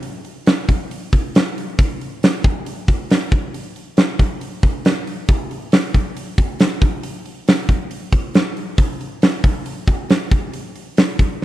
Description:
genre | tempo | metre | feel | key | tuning
rock | 137 BPM | 4/4 | straight | none | none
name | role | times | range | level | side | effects
big rock drum kit | drums | 0.0-11.4 s | hi-hat, kick drum, snare drum | -16 LUFS | equal | none
room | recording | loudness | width
light reverb | dry, close 1970s-style studio recording | -16 LUFS | side -15 dB against mid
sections
0.0-11.4 A section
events
none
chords
none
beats
| 0.03 0.47 0.91 1.35 | 1.79 2.23 2.66 3.10 | 3.54 3.98 4.42 4.85 | 5.29 5.73 6.17 6.60 | 7.04 7.48 7.91 8.35 | 8.79 9.22 9.66 10.10 | 10.54 10.98 11.41

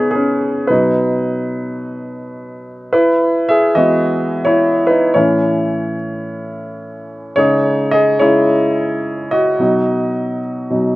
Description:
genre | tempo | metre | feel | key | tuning
pop | 108 BPM | 4/4 | straight | E major | A4 = 445 Hz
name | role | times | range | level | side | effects
warm grand piano | solo | 0.0-11.0 s | A2 to E5 | -14 LUFS | equal | slapback echo
room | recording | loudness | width
little or no reverb | recorded outdoors, with no room sound | -13 LUFS | side -18 dB against mid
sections
0.0-11.0 A section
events
grand piano solo 0.0-11.0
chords
0.0 C#sus2; 0.7 B; 2.9 Eadd9; 5.2 A; 7.4 C#sus2; 9.6 B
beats
0.15 | 0.71 1.26 1.82 2.38 | 2.93 3.49 4.04 4.60 | 5.15 5.71 6.26 6.82 | 7.38 7.93 8.49 9.04 | 9.60 10.15 10.71

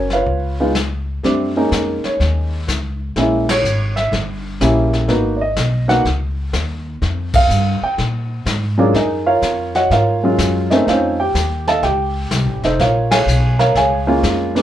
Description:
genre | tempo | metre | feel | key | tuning
jazz piano trio | 124 BPM | 4/4 | swing 67% on 8ths | unclear | A4 = 438 Hz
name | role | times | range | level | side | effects
dark baby grand piano | melody | 0.0-14.6 s | Gb3 to Bb5 | -16 LUFS | right 1 dB | none
upright bass | bass | 0.0-14.6 s | F1 to Bb2 | -20 LUFS | equal | none
vintage brush drum kit | drums | 0.1-14.6 s | brushed snare drum, crash cymbal, hi-hat, kick drum, ride cymbal, snare drum | -22 LUFS | left 2 dB | none
room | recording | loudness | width
moderate small room reverb, RT60 0.5 s | band playing live in one room | -14 LUFS | side -12 dB against mid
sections
0.0-1.2 A section; 1.2-14.6 B section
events
band accent 3.4, 7.3, 13.0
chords
0.3 Db7; 1.2 Gb69; 3.2 Bbm7b5; 4.1 Gdim7; 5.1 Abm9; 7.0 Fsus2; 8.0 Bb7; 8.9 Ebm11; 10.9 F7b13; 12.8 Bbm7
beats
0.26 0.74 | 1.22 1.70 2.19 2.67 | 3.15 3.63 4.12 4.60 | 5.08 5.56 6.05 6.53 | 7.01 7.49 7.97 8.46 | 8.94 9.42 9.90 10.38 | 10.86 11.35 11.83 12.31 | 12.79 13.27 13.75 14.23

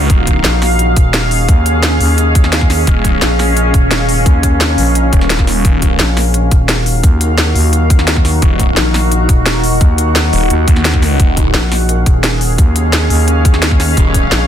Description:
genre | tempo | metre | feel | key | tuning
dark technical drum and bass | 173 BPM | 4/4 | straight | unclear | A4 = 442 Hz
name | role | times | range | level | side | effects
deep dark ambient pad | sustained chords | 0.0-14.5 s | Db4 to Gb5 | -18 LUFS | left 1 dB | chorus, built-in reverb, sidechain pumping
phased detuned saw bass | bass | 0.0-0.4, 2.9-6.0, 8.4-11.5, 14.0-14.3 s | Eb1 to Eb2 | -15 LUFS | equal | phaser, overdrive, sidechain pumping
granular cloud pad | texture | 0.0-14.5 s | Db4 to F5 | -22 LUFS | equal | built-in reverb, sidechain pumping
drum and bass drum kit | drums | 0.1-14.4 s | hi-hat, snare drum | -16 LUFS | left 1 dB | studio ambience
electronic kick drum | drums | 0.1-14.2 s | none | -10 LUFS | equal | studio ambience
growling FM bass | bass | 0.4-14.5 s | Eb1 to Eb2 | -13 LUFS | equal | tube saturation
room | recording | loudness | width
little or no reverb | dense, heavily limited modern master | -9 LUFS | side -10 dB against mid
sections
0.0-14.5 A section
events
none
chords
0.1 Db/Eb; 5.6 Ebmadd9; 11.2 Db/Eb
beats
| 0.10 0.45 0.79 1.14 | 1.49 1.83 2.18 2.53 | 2.87 3.22 3.57 3.91 | 4.26 4.61 4.95 5.30 | 5.65 5.99 6.34 6.69 | 7.03 7.38 7.73 8.07 | 8.42 8.77 9.12 9.46 | 9.81 10.16 10.50 10.85 | 11.20 11.54 11.89 12.24 | 12.58 12.93 13.28 13.62 | 13.97 14.32

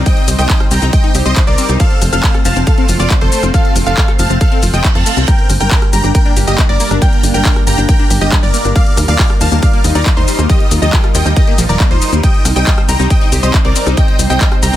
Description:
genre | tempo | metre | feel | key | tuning
uplifting trance | 138 BPM | 4/4 | straight | unclear | A4 = 441 Hz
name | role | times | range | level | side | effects
lush unison pad | sustained chords | 0.0-14.8 s | G3 to C5 | -21 LUFS | right 1 dB | chorus, phaser, vintage 12-bit sampler grit, sidechain pumping
tight sequenced synth | arpeggios | 0.0-14.8 s | F3 to G5 | -23 LUFS | left 4 dB | chorus, sidechain pumping
tight sequencer bass | bass | 0.0-14.8 s | Eb1 to F2 | -14 LUFS | equal | sidechain pumping
big supersaw lead | melody | 0.1-14.8 s | Eb4 to Bb5 | -18 LUFS | equal | phaser, sidechain pumping, ping-pong delay
wide unison pluck | second line | 0.1-14.8 s | C5 to Bb5 | -25 LUFS | equal | sidechain pumping, ping-pong delay
electronic kick drum | drums | 0.1-14.5 s | none | -11 LUFS | equal | overdrive
punchy analog drum machine | drums | 0.1-14.8 s | handclaps, hi-hat, rim click, shaker | -19 LUFS | left 1 dB | none
reverse cymbal | sound effects | 4.6-5.3 s | none | -24 LUFS | right 7 dB | none
room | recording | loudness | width
digital ambience | none | -9 LUFS | side -13 dB against mid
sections
0.0-14.8 A section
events
reverse cymbal 4.6-5.3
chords
0.0 Cm; 1.8 F; 5.3 Gm; 8.8 Ebadd9; 12.2 Cm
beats
| 0.06 0.50 0.93 1.36 | 1.80 2.23 2.67 3.10 | 3.54 3.97 4.41 4.84 | 5.28 5.71 6.15 6.58 | 7.02 7.45 7.89 8.32 | 8.76 9.19 9.63 10.06 | 10.50 10.93 11.37 11.80 | 12.23 12.67 13.10 13.54 | 13.97 14.41

